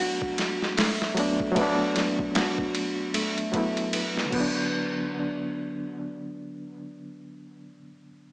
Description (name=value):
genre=trip hop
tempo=76 BPM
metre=4/4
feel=swing 59% on 16ths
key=B minor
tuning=A4 = 437 Hz
part: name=overdriven reed electric piano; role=accompaniment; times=0.0-8.3 s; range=D3 to E4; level=-28 LUFS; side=equal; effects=medium tremolo, harmonic tremolo, tape echo
part: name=nylon-string guitar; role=arpeggios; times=0.0-5.1 s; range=A3 to F#4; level=-32 LUFS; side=equal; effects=low-pass filter, digital delay
part: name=boom bap sampler-style drum kit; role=drums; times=0.2-4.5 s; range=crash cymbal, hi-hat, kick drum, ride cymbal, snare drum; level=-28 LUFS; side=equal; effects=none
room=light reverb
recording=small speaker sound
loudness=-24 LUFS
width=side -26 dB against mid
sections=0.0-4.7 A section; 4.7-7.9 B section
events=filter sweep on nylon-string guitar 0.0-4.7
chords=0.0 E7sus4; 4.3 Bm